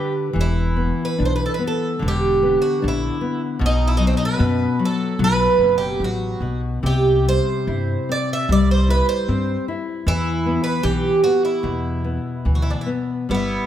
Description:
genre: fado-style ballad.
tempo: 70-78 BPM.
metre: 2/4.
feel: rubato.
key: E minor.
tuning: A4 = 440 Hz.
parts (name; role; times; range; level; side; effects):
picked twelve-string acoustic guitar; melody; 0.0-13.7 s; C4 to E5; -21 LUFS; right 3 dB; none.
nylon-string guitar; accompaniment; 0.0-13.7 s; B2 to B4; -23 LUFS; left 4 dB; none.
upright bass; bass; 0.4-13.6 s; E1 to G2; -22 LUFS; equal; none.
picked twelve-string acoustic guitar; second line; 13.3-13.7 s; B3; -24 LUFS; right 2 dB; none.
room: light reverb.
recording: none.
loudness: -17 LUFS.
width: side -11 dB against mid.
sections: 0.3-13.3 A section.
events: break 0.0-0.3.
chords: 0.3 E5; 3.6 B5; 6.8 C; 10.1 E5.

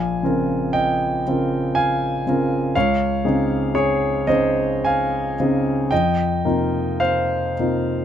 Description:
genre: classical, impressionist solo piano.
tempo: 52-62 BPM.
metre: 3/4.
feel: rubato.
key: Bb dorian.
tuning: A4 = 439 Hz.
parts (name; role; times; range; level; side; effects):
warm concert grand piano; solo; 0.0-8.0 s; Bb1 to Ab5; -18 LUFS; equal; none.
room: little or no reverb.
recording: close, detailed microphones.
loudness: -18 LUFS.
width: side -9 dB against mid.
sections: 0.0-8.0 A section.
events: none.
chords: 0.0 Bbm9; 2.7 Dbmaj9; 5.9 F7sus4.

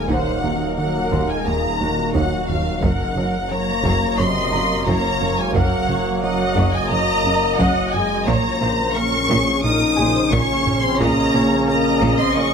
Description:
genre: cinematic, hybrid orchestral and electronic film score.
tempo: 88 BPM.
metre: 4/4.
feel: straight.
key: unclear.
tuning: A4 = 436 Hz.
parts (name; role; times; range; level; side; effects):
rich symphonic violin section; melody; 0.0-12.5 s; F5 to Eb6; -24 LUFS; left 1 dB; none.
warm symphonic violin section; second line; 0.0-12.5 s; F5 to Eb6; -26 LUFS; left 1 dB; none.
warm symphonic viola section; accompaniment; 0.0-12.5 s; Gb4 to Eb5; -26 LUFS; right 1 dB; none.
deep dark ambient pad; sustained chords; 0.0-12.5 s; Db3 to Eb5; -29 LUFS; left 1 dB; chorus, built-in reverb.
mellow French horn section; sustained chords; 0.0-12.5 s; C3 to Eb4; -25 LUFS; left 5 dB; none.
warm trombone section; sustained chords; 0.0-12.5 s; Db3 to Db4; -26 LUFS; right 4 dB; none.
swelling detuned saw bass; bass; 0.0-12.5 s; Eb1 to Bb1; -29 LUFS; equal; none.
felt-muted upright piano; texture; 0.0-12.5 s; Ab4 to Db6; -33 LUFS; left 2 dB; none.
plucky analog bass; riff; 0.1-12.5 s; Eb2 to Bb3; -26 LUFS; right 2 dB; none.
rich symphonic cello section; bass; 0.1-12.4 s; Eb2 to Bb2; -26 LUFS; right 1 dB; none.
rich symphonic double bass section; bass; 0.1-12.4 s; Gb1 to Eb2; -27 LUFS; right 2 dB; none.
taiko ensemble; drums; 0.1-12.5 s; none; -27 LUFS; equal; none.
room: light reverb.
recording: close, detailed microphones.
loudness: -16 LUFS.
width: side -6 dB against mid.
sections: 0.0-12.5 A section.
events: none.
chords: 0.0 Ebm; 2.8 Gb; 8.3 Bbm.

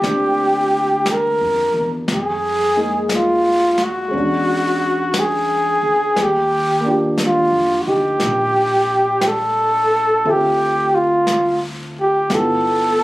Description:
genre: jazz ballad.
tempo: 59 BPM.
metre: 4/4.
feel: swing 66% on 8ths.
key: G minor.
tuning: A4 = 440 Hz.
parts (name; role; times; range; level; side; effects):
warm flugelhorn; melody; 0.0-13.0 s; F4 to Bb4; -16 LUFS; equal; none.
dark grand piano; accompaniment; 0.0-13.0 s; Ab3 to E5; -24 LUFS; equal; none.
upright bass; bass; 0.0-13.0 s; G1 to F2; -30 LUFS; equal; none.
jazz brush drum kit; drums; 0.0-13.0 s; brushed snare drum, hi-hat, snare drum; -27 LUFS; left 1 dB; none.
room: light reverb.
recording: recorded on a phone in the room, club reverb.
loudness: -15 LUFS.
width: side -17 dB against mid.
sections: 0.0-13.0 A section.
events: none.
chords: 0.0 Gm7; 2.1 Fm7; 4.1 E13; 6.2 Ebmaj9; 10.3 Dm7; 12.3 G13.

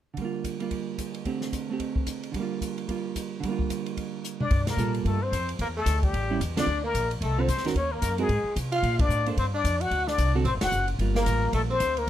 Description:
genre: jazz, small-group swing and bop.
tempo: 222 BPM.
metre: 4/4.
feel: swing 60% on 8ths.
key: G minor.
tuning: A4 = 440 Hz.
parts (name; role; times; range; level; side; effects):
hollow-body jazz guitar; accompaniment; 0.1-11.7 s; D3 to C5; -30 LUFS; right 7 dB; none.
open jazz drum kit; drums; 0.2-12.1 s; hi-hat, kick drum, ride cymbal, snare drum, toms; -32 LUFS; equal; none.
trumpet with plunger mute; melody; 4.4-12.1 s; G4 to F#5; -29 LUFS; left 4 dB; plate reverb.
growling tenor saxophone; second line; 4.4-12.1 s; G3 to F#4; -32 LUFS; right 3 dB; none.
upright bass; bass; 4.5-12.1 s; D1 to C3; -27 LUFS; equal; none.
room: light reverb.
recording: close, detailed microphones.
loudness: -24 LUFS.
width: side -11 dB against mid.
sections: 0.2-4.5 A section; 4.5-12.1 B section.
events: drum fill 4.2; band accent 4.6, 6.5, 9.0, 10.6.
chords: 0.2 Gm7/D; 1.3 D7sus4; 2.3 Gm7/D; 4.5 Gm9; 5.6 Gm69; 6.1 A7; 6.7 D7(no3); 7.8 Ebm; 8.3 Ab; 8.8 Bbmaj7; 9.9 D7; 11.0 Gm9.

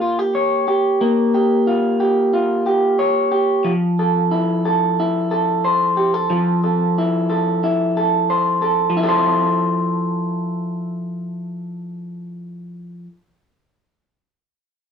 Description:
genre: indie pop.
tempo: 91 BPM.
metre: 4/4.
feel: straight.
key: F major.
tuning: A4 = 440 Hz.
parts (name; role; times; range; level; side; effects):
electric guitar through a small old amp; solo; 0.0-13.2 s; F3 to Db5; -16 LUFS; equal; warbly pitch drift.
room: moderate studio reverb, RT60 0.5 s.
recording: band playing live in one room.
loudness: -16 LUFS.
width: side -7 dB against mid.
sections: 0.0-8.9 A section; 8.9-11.6 B section.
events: none.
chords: 0.0 Bbm6; 3.7 Fmaj7.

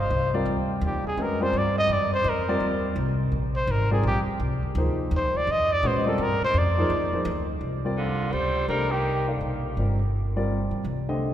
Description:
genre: jazz.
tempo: 168 BPM.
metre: 3/4.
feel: swing 63% on 8ths.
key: F dorian, C dorian from 7.6 s.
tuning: A4 = 440 Hz.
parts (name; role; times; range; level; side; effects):
mellow trumpet; melody; 0.0-9.3 s; F4 to Eb5; -26 LUFS; equal; none.
upright bass; bass; 0.0-11.3 s; G1 to Bb2; -27 LUFS; equal; none.
warm grand piano; accompaniment; 0.3-11.3 s; D3 to F5; -29 LUFS; equal; none.
bright tenor saxophone; second line; 8.0-9.3 s; D3 to G3; -32 LUFS; right 3 dB; none.
room: wet cathedral reverb, RT60 4.7 s.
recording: recorded in a church or concert hall.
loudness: -22 LUFS.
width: side -11 dB against mid.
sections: 0.0-7.6 A section; 7.6-11.3 B section.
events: trumpet solo 0.0-7.6.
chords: 0.0 F13sus4; 7.6 Cm11.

